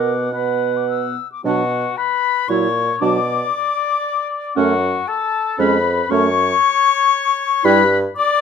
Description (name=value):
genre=quick classical-period movement for wind quintet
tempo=116 BPM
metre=3/4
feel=rubato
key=B minor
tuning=A4 = 440 Hz
part: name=concert flute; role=melody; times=0.0-8.4 s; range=F#5 to E6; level=-19 LUFS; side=left 10 dB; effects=none
part: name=warm oboe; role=second line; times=0.0-8.4 s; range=F#4 to F#5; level=-21 LUFS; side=left 5 dB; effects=none
part: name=mellow clarinet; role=accompaniment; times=0.0-7.8 s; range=C#4 to B4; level=-21 LUFS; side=right 12 dB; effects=none
part: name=warm French horn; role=accompaniment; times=0.0-7.8 s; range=F#3 to B3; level=-22 LUFS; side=right 1 dB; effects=none
part: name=warm bassoon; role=bass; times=0.0-8.1 s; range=E#2 to B2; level=-20 LUFS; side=right 2 dB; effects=none
room=light reverb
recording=close, detailed microphones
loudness=-15 LUFS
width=side -6 dB against mid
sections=0.0-1.5 A section; 1.5-8.4 B section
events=none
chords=0.0 Bm; 2.5 F#7/A#; 3.0 Bm; 4.6 F#m; 5.6 C#7/E#; 6.1 F#m; 7.6 Em/G